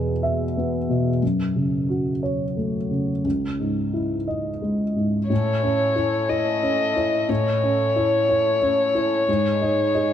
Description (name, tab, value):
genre	neoclassical piano and strings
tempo	60 BPM (dotted quarters)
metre	6/8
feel	rubato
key	unclear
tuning	A4 = 440 Hz
part	dark upright piano	accompaniment	0.0-10.1 s	C#2 to E5	-22 LUFS	equal	none
part	dark violin	melody	5.3-10.1 s	C#5 to D#5	-21 LUFS	left 3 dB	none
part	hand-pumped harmonium	sustained chords	5.3-10.1 s	G#3 to A4	-32 LUFS	right 3 dB	none
room	moderate plate reverb, RT60 3.3 s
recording	dark, warm production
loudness	-20 LUFS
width	side -10 dB against mid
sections	0.0-5.3 A section; 5.3-10.1 B section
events	none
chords	0.0 E; 1.2 F#m; 3.2 C#madd9; 5.3 A; 9.3 G#5